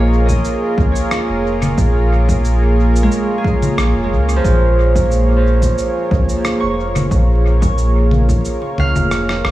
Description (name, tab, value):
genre	ambient dub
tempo	90 BPM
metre	4/4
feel	swing 53% on 16ths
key	Bb minor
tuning	A4 = 438 Hz
part	warm analog pad	sustained chords	0.0-9.5 s	Bb3 to Db5	-19 LUFS	right 1 dB	chorus
part	Celtic harp	arpeggios	0.0-9.5 s	F3 to Db6	-22 LUFS	right 1 dB	tape echo
part	warm sub bass	bass	0.0-9.5 s	F1 to Db2	-14 LUFS	equal	none
part	electronic cabasa, rim click and congas	drums	0.3-9.5 s	none	-23 LUFS	left 1 dB	dub echo
part	electronic kick drum	drums	0.3-8.4 s	none	-19 LUFS	equal	none
room	light reverb, digital ambience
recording	vinyl crackle, studio reverb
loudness	-12 LUFS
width	side -15 dB against mid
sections	0.0-9.5 A section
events	break 8.4-9.5; drum fill 9.1-9.5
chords	0.0 Bbm7